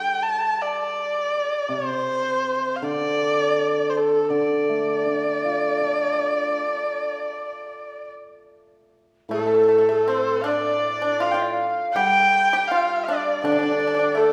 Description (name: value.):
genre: chinese traditional, Chinese chamber ensemble.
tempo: 80 BPM.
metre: 4/4.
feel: rubato.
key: D yu mode.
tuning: A4 = 441 Hz.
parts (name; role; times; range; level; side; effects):
dark erhu; melody; 0.0-14.3 s; A4 to A5; -24 LUFS; equal; none.
hammered dulcimer; accompaniment; 0.0-14.3 s; A2 to A4; -28 LUFS; equal; none.
large dizi; second line; 9.3-14.3 s; A4 to G5; -28 LUFS; equal; none.
pipa; second line; 9.3-14.3 s; A3 to G4; -29 LUFS; equal; none.
room: wet recital hall reverb, RT60 1.6 s.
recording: heard from further back in the room.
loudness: -22 LUFS.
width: mono.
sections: 0.0-8.9 A section; 8.9-14.3 B section.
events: none.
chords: none.